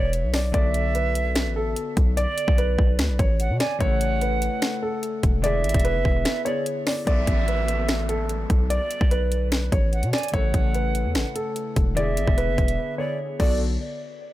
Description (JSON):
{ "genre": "hip hop, trap", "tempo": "147 BPM", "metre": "4/4", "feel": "half-time", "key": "B dorian", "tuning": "A4 = 440 Hz", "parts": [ { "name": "dark concert grand piano", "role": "melody", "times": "0.0-13.6 s", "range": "A4 to D5", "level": "-28 LUFS", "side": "right 1 dB", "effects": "low-pass filter, tape echo" }, { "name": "silver concert flute", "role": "second line", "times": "0.0-13.6 s", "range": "D5 to G#5", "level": "-30 LUFS", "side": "right 5 dB", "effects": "tape echo" }, { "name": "distorted 808-style bass", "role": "bass", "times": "0.0-13.8 s", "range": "E1 to B2", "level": "-24 LUFS", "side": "equal", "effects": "distortion" }, { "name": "trap drum kit", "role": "drums", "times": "0.1-13.5 s", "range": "crash cymbal, finger snaps, hi-hat, kick drum, snare drum", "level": "-23 LUFS", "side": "equal", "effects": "none" }, { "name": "glassy digital keys", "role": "accompaniment", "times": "0.5-13.6 s", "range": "C#3 to A4", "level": "-32 LUFS", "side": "left 5 dB", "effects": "chorus, low-pass filter" }, { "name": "downlifter", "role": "sound effects", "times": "7.1-10.3 s", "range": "none", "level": "-36 LUFS", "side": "right 1 dB", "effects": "none" } ], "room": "digital ambience", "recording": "none", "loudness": "-20 LUFS", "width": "side -15 dB against mid", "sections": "0.0-7.1 A section; 7.1-13.6 B section", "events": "break 6.3-7.1, 12.8-13.6", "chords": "0.0 E7(no3); 0.5 Bm7; 3.8 A; 5.4 E7; 7.1 Bm7; 10.3 A; 12.0 E7; 13.4 Bm7; 13.6 N.C." }